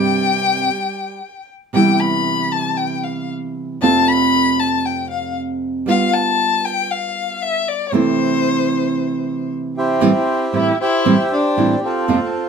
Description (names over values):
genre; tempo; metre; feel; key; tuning
tango; 116 BPM; 4/4; rubato; C major; A4 = 439 Hz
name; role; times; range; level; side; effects
warm violin; second line; 0.0-12.5 s; C4 to B5; -19 LUFS; left 6 dB; none
nylon-string guitar; accompaniment; 0.0-12.2 s; F2 to G4; -18 LUFS; right 3 dB; none
bandoneon; melody; 9.8-12.5 s; E4 to E5; -18 LUFS; right 2 dB; none
room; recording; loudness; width
moderate small room reverb, RT60 0.5 s; band playing live in one room; -15 LUFS; side -6 dB against mid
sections
0.0-10.0 A section; 10.0-12.5 B section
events
violin solo 0.0-10.0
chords
0.0 Gsus4; 0.7 N.C.; 1.7 Cmaj7; 3.8 F; 5.9 G7; 7.9 C6; 10.0 Am7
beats
0.18 0.70 1.22 | 1.74 2.27 2.78 3.30 | 3.82 4.33 4.85 5.36 | 5.87 6.38 6.90 7.41 | 7.93 8.45 8.97 9.49 | 10.02 10.54 11.05 11.57 | 12.09